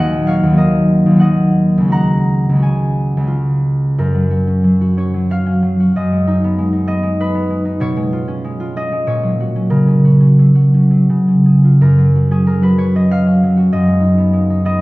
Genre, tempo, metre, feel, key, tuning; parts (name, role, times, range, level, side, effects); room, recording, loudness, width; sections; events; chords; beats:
classical, solo harp piece; 83-101 BPM; 3/4; rubato; F# major; A4 = 441 Hz
concert harp; solo; 0.0-14.8 s; C#2 to A#5; -11 LUFS; equal
wet recital hall reverb, RT60 1.7 s; heard from further back in the room; -11 LUFS; side -21 dB against mid
0.0-4.0 A section; 4.0-14.8 B section
0.0 D#m; 1.9 C#sus4; 3.3 C#; 4.0 F#; 6.0 G#m/F#; 7.8 C#7/B; 9.1 F#/A#; 9.7 F#/C#; 11.1 C#; 11.8 F#; 13.7 G#m/F#
0.58 1.21 | 1.92 2.63 3.31 | 3.98 4.65 5.29 | 5.95 6.59 7.20 | 7.81 8.43 9.07 | 9.71 10.40 11.10 | 11.81 12.46 13.10 | 13.72 14.33